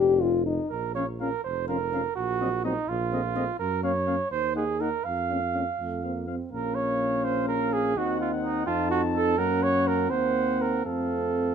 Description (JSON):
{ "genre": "classical, brass quintet", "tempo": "83 BPM (dotted quarters)", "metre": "6/8", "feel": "straight", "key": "Bb minor", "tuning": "A4 = 438 Hz", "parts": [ { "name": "mellow French horn", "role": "accompaniment", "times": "0.0-11.5 s", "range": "C4 to G4", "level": "-28 LUFS", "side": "left 5 dB", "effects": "none" }, { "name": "warm trombone", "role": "accompaniment", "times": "0.0-11.5 s", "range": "F3 to D4", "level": "-37 LUFS", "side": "right 3 dB", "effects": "none" }, { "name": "mellow tuba", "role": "bass", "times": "0.0-11.5 s", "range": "F1 to Gb2", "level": "-32 LUFS", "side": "right 2 dB", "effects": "none" }, { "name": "clear flugelhorn", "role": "second line", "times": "0.7-11.5 s", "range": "Eb4 to F5", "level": "-27 LUFS", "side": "right 6 dB", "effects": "none" }, { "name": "clear trumpet", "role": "melody", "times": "1.0-11.5 s", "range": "Eb5 to A5", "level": "-37 LUFS", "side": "left 10 dB", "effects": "none" } ], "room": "light reverb", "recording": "minimal, uncompressed stereo recording", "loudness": "-24 LUFS", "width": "side -7 dB against mid", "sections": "0.7-11.5 A section", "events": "none", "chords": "0.0 Bb (rootless); 0.7 Bbm; 2.2 Cdim/Bb; 2.9 F7/Bb; 3.6 Gbmaj7; 4.3 Ebm; 5.1 Bbm/F; 5.8 F; 6.5 Bbm; 8.0 Cdim/Eb; 8.7 F7; 9.4 Gb; 10.1 Cm7b5/Eb; 10.9 F", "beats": "| 0.71 1.45 | 2.17 2.89 | 3.60 4.32 | 5.06 5.79 | 6.52 7.25 | 7.96 8.67 | 9.38 10.11 | 10.86" }